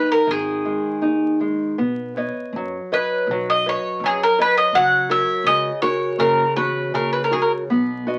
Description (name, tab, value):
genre	fado-style ballad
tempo	80 BPM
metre	2/4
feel	rubato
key	B major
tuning	A4 = 437 Hz
part	bowl-back mandolin	melody	0.0-7.5 s	G#4 to F#5	-21 LUFS	equal	none
part	nylon-string guitar	accompaniment	0.0-8.2 s	C#3 to D#5	-25 LUFS	equal	none
part	upright bass	bass	0.3-8.2 s	F#1 to F#2	-37 LUFS	equal	none
room	moderate studio reverb, RT60 0.5 s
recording	very old 78 rpm record, vinyl crackle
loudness	-20 LUFS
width	mono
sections	0.0-1.8 A section; 1.8-8.2 B section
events	none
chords	0.0 G#5; 1.8 Badd9; 4.7 F#